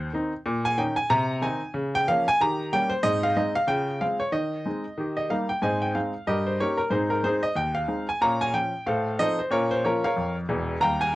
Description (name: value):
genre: jazz, stride piano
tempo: 186 BPM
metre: 4/4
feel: swing 60% on 8ths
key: Ab major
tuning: A4 = 438 Hz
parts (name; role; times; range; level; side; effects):
- clear grand piano; solo; 0.0-11.2 s; Fb1 to Bb5; -23 LUFS; equal; none
room: moderate booth ambience, RT60 0.2 s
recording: home recording on cassette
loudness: -23 LUFS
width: side -17 dB against mid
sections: 0.0-5.6 A section; 5.6-11.2 B section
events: none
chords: 0.5 Eb5/Bb; 1.1 Ab/C; 1.8 Bbm/Db; 2.4 Eb7; 3.0 Ab; 3.7 Dbmaj7; 4.3 Ab/Eb; 5.0 Eb; 5.6 Ab; 6.3 Eb7/G; 6.9 Ab; 8.2 Bbm; 8.9 F7/A; 9.5 Bbm